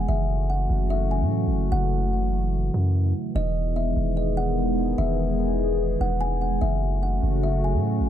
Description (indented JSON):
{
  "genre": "hip hop, atmospheric cloud-rap",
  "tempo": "147 BPM",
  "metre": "4/4",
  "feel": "half-time",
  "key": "unclear",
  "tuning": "A4 = 438 Hz",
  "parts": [
    { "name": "kalimba", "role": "melody", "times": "0.0-7.8 s", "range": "D#5 to G#5", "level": "-31 LUFS", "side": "left 1 dB", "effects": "ping-pong delay" },
    { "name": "dark analog pad", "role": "sustained chords", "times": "0.0-8.1 s", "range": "C#3 to G#4", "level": "-26 LUFS", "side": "equal", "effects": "chorus, phaser" },
    { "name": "long sustained 808-style bass", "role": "bass", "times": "0.0-8.1 s", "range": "E1 to A2", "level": "-24 LUFS", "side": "equal", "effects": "none" }
  ],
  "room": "small room ambience",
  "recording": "dark, warm production",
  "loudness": "-22 LUFS",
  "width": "side -11 dB against mid",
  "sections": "0.0-8.1 A section",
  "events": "none",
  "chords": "0.1 F#m7; 3.4 Emaj7; 6.6 F#m7"
}